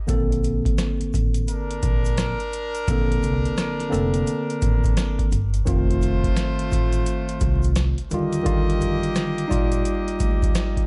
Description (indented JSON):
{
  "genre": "hip hop, boom-bap hip-hop",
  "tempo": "86 BPM",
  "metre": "4/4",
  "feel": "swing 63% on 16ths",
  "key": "Bb major",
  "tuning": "A4 = 441 Hz",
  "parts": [
    { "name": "tine electric piano", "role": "accompaniment", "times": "0.1-10.9 s", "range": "D3 to D5", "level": "-28 LUFS", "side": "equal", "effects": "cassette tape, high-pass filter, low-pass filter" },
    { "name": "upright bass", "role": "bass", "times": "0.1-10.5 s", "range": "F1 to F2", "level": "-28 LUFS", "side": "equal", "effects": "none" },
    { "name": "booming analog drum machine", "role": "drums", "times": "0.1-10.9 s", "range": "hi-hat, kick drum, rim click, snare drum", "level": "-25 LUFS", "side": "equal", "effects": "overdrive" },
    { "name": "egg shaker", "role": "percussion", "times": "0.1-10.8 s", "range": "none", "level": "-48 LUFS", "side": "equal", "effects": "none" },
    { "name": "brilliant trumpet section", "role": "stabs", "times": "1.5-10.9 s", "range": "A3 to Eb5", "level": "-32 LUFS", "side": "equal", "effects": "high-pass filter, low-pass filter, digital delay" }
  ],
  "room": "studio reverb",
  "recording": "vinyl crackle, nothing above 10.9 kHz",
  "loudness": "-22 LUFS",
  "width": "mono",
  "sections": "0.0-10.9 A section",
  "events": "none",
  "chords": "0.1 Bbmaj9; 5.7 F7; 8.1 Ebmaj9",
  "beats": "| 0.09 0.79 1.48 2.18 | 2.88 3.58 4.27 4.97 | 5.67 6.37 7.06 7.76 | 8.46 9.16 9.86 10.55"
}